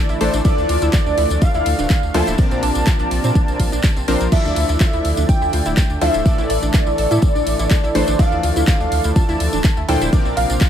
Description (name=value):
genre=progressive house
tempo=124 BPM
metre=4/4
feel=straight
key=D minor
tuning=A4 = 442 Hz
part: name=plucky unison lead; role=melody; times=0.0-10.7 s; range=D5 to A5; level=-23 LUFS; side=equal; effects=wide subtle chorus, sidechain pumping, ping-pong delay
part: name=soft synth bell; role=second line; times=0.0-10.7 s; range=D5 to A5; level=-31 LUFS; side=right 2 dB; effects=none
part: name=filtered supersaw swell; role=sustained chords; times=0.0-10.7 s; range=C3 to A4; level=-28 LUFS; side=right 2 dB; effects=sidechain pumping
part: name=analog pluck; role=arpeggios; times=0.0-10.7 s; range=C4 to A5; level=-26 LUFS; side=right 1 dB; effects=chorus, sidechain pumping, tape echo
part: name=saturated sub bass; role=bass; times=0.1-10.6 s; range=D1 to Bb2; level=-21 LUFS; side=equal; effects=sidechain pumping
part: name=tambourine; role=percussion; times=0.1-10.7 s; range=none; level=-34 LUFS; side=left 3 dB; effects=none
part: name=supersaw stab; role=stabs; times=0.2-10.7 s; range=A2 to D5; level=-23 LUFS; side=left 1 dB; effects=sidechain pumping
part: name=deep house drum kit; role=drums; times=0.2-10.7 s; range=crash cymbal, handclaps, hi-hat, ride cymbal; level=-27 LUFS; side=equal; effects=small room ambience
part: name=electronic kick drum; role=drums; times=0.5-10.7 s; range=none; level=-16 LUFS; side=equal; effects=small room ambience
room=little or no reverb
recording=none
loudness=-14 LUFS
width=side -10 dB against mid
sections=0.0-10.7 A section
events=none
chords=0.5 Dmadd9; 2.4 Bbadd9; 4.3 Dmadd9; 6.3 Asus4; 8.2 Dmadd9; 10.1 Bbadd9